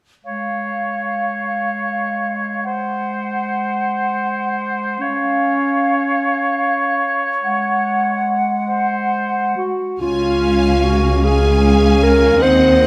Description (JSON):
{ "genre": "classical", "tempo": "44-52 BPM (dotted quarters)", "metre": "6/8", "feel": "rubato", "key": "Db major", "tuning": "A4 = 441 Hz", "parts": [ { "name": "mellow clarinet", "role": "second line", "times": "0.2-12.9 s", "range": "Ab3 to C5", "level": "-22 LUFS", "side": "equal", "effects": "none" }, { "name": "small flute group", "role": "second line", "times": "0.2-9.6 s", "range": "F5 to Gb5", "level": "-24 LUFS", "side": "equal", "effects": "none" }, { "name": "clear oboe", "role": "second line", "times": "0.3-9.6 s", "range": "C5 to Db5", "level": "-24 LUFS", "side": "equal", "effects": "none" }, { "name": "bright studio violin section", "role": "melody", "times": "10.0-12.9 s", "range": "Gb5 to Ab5", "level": "-26 LUFS", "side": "equal", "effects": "none" }, { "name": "warm symphonic violin section", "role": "second line", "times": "10.0-12.9 s", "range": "Eb5 to F5", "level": "-28 LUFS", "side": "equal", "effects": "none" }, { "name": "rich studio viola section", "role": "accompaniment", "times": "10.0-12.9 s", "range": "C4 to Db4", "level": "-22 LUFS", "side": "equal", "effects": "none" }, { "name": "rich studio double bass section", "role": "bass", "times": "10.0-12.9 s", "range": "Db2 to Eb2", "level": "-20 LUFS", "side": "equal", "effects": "none" }, { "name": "warm symphonic cello section", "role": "bass", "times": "10.0-12.9 s", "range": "Db2 to Eb2", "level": "-22 LUFS", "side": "equal", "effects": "none" } ], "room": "wet recital hall reverb, RT60 1.8 s", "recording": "none", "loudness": "-18 LUFS", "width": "mono", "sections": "0.3-10.0 A section; 10.0-12.9 B section", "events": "none", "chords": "0.3 Db/Ab; 2.6 Ab7; 5.0 Db; 7.4 Ab7; 10.0 Db" }